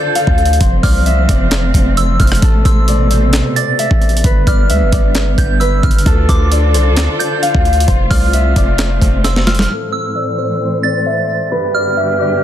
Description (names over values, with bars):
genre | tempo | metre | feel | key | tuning
hip hop, trap | 132 BPM | 4/4 | half-time | A minor | A4 = 441 Hz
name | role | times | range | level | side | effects
concert harp | melody | 0.0-12.4 s | A4 to F5 | -18 LUFS | left 2 dB | low-pass filter
soft synth bell | second line | 0.0-12.4 s | D6 to A6 | -21 LUFS | right 4 dB | chorus, ping-pong delay
dark symphonic string section | sustained chords | 0.0-12.4 s | G2 to C5 | -20 LUFS | right 2 dB | low-pass filter
breakbeat sampler-style drum kit | drums | 0.2-9.7 s | handclaps, hi-hat, kick drum, rim click, snare drum | -14 LUFS | equal | none
warm 808-style bass | bass | 0.3-9.7 s | F1 to D2 | -14 LUFS | equal | none
room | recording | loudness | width
little or no reverb | dense, heavily limited modern master | -10 LUFS | side -11 dB against mid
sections
0.0-9.7 A section; 9.7-12.4 B section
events
drum fill 9.2-9.7; filter sweep 9.7-12.4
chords
0.0 Dm; 0.6 F; 2.4 Amadd9; 4.2 G; 6.1 Dm; 7.9 F; 9.7 Am; 11.5 G